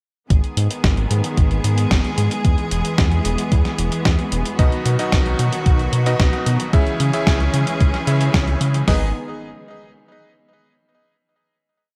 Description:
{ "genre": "italo disco", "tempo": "112 BPM", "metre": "4/4", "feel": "straight", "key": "G# minor", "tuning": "A4 = 440 Hz", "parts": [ { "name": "clear symphonic string section", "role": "sustained chords", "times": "0.3-9.1 s", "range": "D#3 to G#4", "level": "-27 LUFS", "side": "equal", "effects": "none" }, { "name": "round analog bass", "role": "bass", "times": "0.3-9.1 s", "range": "E1 to C#3", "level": "-22 LUFS", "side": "equal", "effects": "none" }, { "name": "clean 12-bit digital drum machine", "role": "drums", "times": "0.3-9.0 s", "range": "hi-hat, kick drum, snare drum", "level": "-20 LUFS", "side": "equal", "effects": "none" }, { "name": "clean 12-bit digital drum machine", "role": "drums", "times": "0.3-8.8 s", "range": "hi-hat, snare drum", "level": "-27 LUFS", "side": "equal", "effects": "none" }, { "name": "bright electric grand piano", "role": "stabs", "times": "4.6-9.1 s", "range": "B2 to E5", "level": "-27 LUFS", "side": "equal", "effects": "digital delay" } ], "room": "light reverb, digital ambience", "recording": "bright 1980s-style digital production", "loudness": "-18 LUFS", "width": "mono", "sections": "0.3-8.9 verse; 8.9-11.0 final chord", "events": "none", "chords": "0.3 G#m; 2.4 E; 4.6 B; 6.7 C#m; 8.9 G#m", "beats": "| 0.30 0.84 1.38 1.91 | 2.45 2.98 3.52 4.05 | 4.59 5.12 5.66 6.20 | 6.73 7.27 7.80 8.34 | 8.88" }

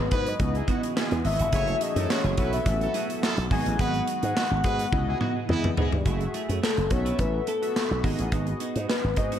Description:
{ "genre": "early-eighties boogie funk", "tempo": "106 BPM", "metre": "4/4", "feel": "straight", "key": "F# dorian", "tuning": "A4 = 438 Hz", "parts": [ { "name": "soft octave-layered synth lead", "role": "melody", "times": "0.0-9.4 s", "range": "A4 to G#5", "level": "-30 LUFS", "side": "left 4 dB", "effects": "chorus, ping-pong delay" }, { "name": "chorused pulse-width pad", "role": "sustained chords", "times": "0.0-6.1 s", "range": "B2 to D#5", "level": "-35 LUFS", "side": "right 2 dB", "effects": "none" }, { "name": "clean electric guitar", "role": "riff", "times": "0.0-9.4 s", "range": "A3 to B4", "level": "-35 LUFS", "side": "right 8 dB", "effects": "lush chorus" }, { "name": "slap bass with an envelope filter", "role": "bass", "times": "0.0-9.4 s", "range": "F#1 to G#2", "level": "-27 LUFS", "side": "equal", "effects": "none" }, { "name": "warm horn section", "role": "second line", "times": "0.1-5.7 s", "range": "G#3 to C#5", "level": "-35 LUFS", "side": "right 4 dB", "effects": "ping-pong delay" }, { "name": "modern studio drum kit", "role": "drums", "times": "0.1-9.4 s", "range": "handclaps, hi-hat, kick drum, snare drum, toms", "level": "-28 LUFS", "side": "equal", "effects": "none" }, { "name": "chorused polysynth", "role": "accompaniment", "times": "0.4-9.4 s", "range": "A3 to E5", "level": "-34 LUFS", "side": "left 1 dB", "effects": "none" } ], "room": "moderate plate reverb, RT60 1.4 s, small room ambience", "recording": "dreamy mix soaked in reverb", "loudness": "-23 LUFS", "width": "side -10 dB against mid", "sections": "0.0-6.1 A section; 6.1-9.4 B section", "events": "drum fill 4.9-6.1; soft synth lead solo 6.1-9.4", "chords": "0.4 C#m11; 1.5 F#m9; 2.4 B7sus4; 3.5 G#m7; 4.9 C#m11; 5.5 Emaj7; 6.1 F#m9; 6.9 B7sus4; 8.0 G#m7", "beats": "0.40 0.96 | 1.53 2.10 2.66 3.23 | 3.79 4.36 4.93 5.49 | 6.06 6.62 7.19 7.76 | 8.32 8.89" }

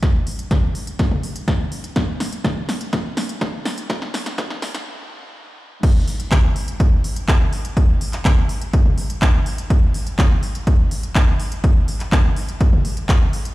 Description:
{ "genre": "techno", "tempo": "124 BPM", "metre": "4/4", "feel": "straight", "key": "none", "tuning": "none", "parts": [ { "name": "electronic kick drum", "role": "drums", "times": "0.0-13.2 s", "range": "none", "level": "-16 LUFS", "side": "equal", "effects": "none" }, { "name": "techno drum kit", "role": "drums", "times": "0.0-13.5 s", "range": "crash cymbal, handclaps, hi-hat, snare drum, toms", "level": "-25 LUFS", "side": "equal", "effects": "sidechain pumping on hats, sidechain pumping on toms, sidechain pumping on cymbals" } ], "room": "digital ambience", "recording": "played on a big sound system in a bare room, large studio reverb, high-pass filter", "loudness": "-16 LUFS", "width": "side -18 dB against mid", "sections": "0.0-5.8 A section; 5.8-13.5 B section", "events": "build-up 0.0-5.8; drum fill 0.0-4.9; filter sweep 0.0-5.8; stop 4.9-5.8; drop 5.8-13.5", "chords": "none", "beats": "| 0.03 0.51 0.99 1.48 | 1.96 2.45 2.93 3.41 | 3.90 4.38 4.87 5.35 | 5.83 6.32 6.80 7.29 | 7.77 8.25 8.74 9.22 | 9.70 10.19 10.67 11.16 | 11.64 12.12 12.61 13.09" }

